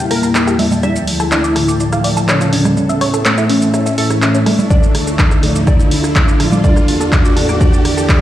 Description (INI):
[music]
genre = melodic techno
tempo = 124 BPM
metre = 4/4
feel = straight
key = D harmonic minor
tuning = A4 = 440 Hz
[part]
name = warm analog pad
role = sustained chords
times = 0.0-8.2 s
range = D2 to E5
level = -22 LUFS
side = equal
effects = chorus, sidechain pumping
[part]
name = tight sequenced synth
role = arpeggios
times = 0.0-8.2 s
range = C#4 to D6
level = -22 LUFS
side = equal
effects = chorus, phaser, sidechain pumping, dub echo
[part]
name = analog synth brass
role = stabs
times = 0.0-7.6 s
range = A2 to E4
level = -20 LUFS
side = left 2 dB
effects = chorus, sidechain pumping, dub echo
[part]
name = riser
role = sound effects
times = 0.1-8.2 s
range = none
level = -25 LUFS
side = right 1 dB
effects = none
[part]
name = granular cloud pad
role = texture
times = 0.0-8.2 s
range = E4 to A5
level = -26 LUFS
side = equal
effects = built-in reverb, sidechain pumping
[part]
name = fat analog lead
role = melody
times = 0.1-8.2 s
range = A3 to E4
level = -18 LUFS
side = equal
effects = lush chorus, sidechain pumping, tape echo
[part]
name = glassy wavetable pluck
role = second line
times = 0.1-8.2 s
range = A4 to E5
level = -27 LUFS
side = right 1 dB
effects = chorus, cassette tape, sidechain pumping, dub echo
[part]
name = punchy analog drum machine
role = drums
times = 0.1-8.2 s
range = congas, handclaps, hi-hat, rim click, shaker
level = -18 LUFS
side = right 1 dB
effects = none
[part]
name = electronic kick drum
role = drums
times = 4.7-8.2 s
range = none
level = -12 LUFS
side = equal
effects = none
[sound]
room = moderate concert hall reverb, RT60 2.2 s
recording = played on a big sound system in a bare room, large studio reverb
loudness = -11 LUFS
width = side -12 dB against mid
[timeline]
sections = 0.0-8.2 A section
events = build-up 0.0-8.2; filter sweep on synth arpeggio sound 0.0-8.2; filter sweep on analog synth lead 0.0-8.2; filter sweep on synth pluck 0.0-8.2; filter sweep on analog polysynth 0.0-8.2; riser 0.1-8.2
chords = 0.0 Edim; 0.8 Dm; 2.8 A; 4.7 Dm; 6.6 Edim